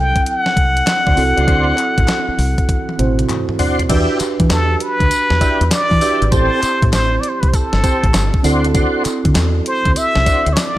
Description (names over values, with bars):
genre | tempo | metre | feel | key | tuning
R&B, new jack swing | 99 BPM | 4/4 | swing 65% on 16ths | unclear | A4 = 440 Hz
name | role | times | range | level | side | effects
trumpet with plunger mute | melody | 0.0-10.8 s | A4 to G5 | -17 LUFS | equal | none
mellow tine electric piano | accompaniment | 0.0-10.8 s | F#3 to C5 | -22 LUFS | right 4 dB | analog chorus
deep dub fingered electric bass | bass | 0.0-10.5 s | G1 to E3 | -17 LUFS | equal | none
crisp 8-bit digital drum machine | drums | 0.2-10.8 s | crash cymbal, hi-hat, kick drum, snare drum, tambourine, toms | -18 LUFS | equal | none
group handclap | percussion | 0.9-10.8 s | none | -30 LUFS | left 6 dB | none
tonewheel organ | stabs | 1.1-10.5 s | C4 to C5 | -22 LUFS | left 1 dB | chorus vibrato, slow rotary speaker
room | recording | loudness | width
little or no reverb | none | -13 LUFS | side -15 dB against mid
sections
0.0-3.9 A section; 3.9-10.8 B section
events
drum fill 2.7-3.9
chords
0.0 D7; 3.9 Em7; 6.3 Am7; 8.4 D7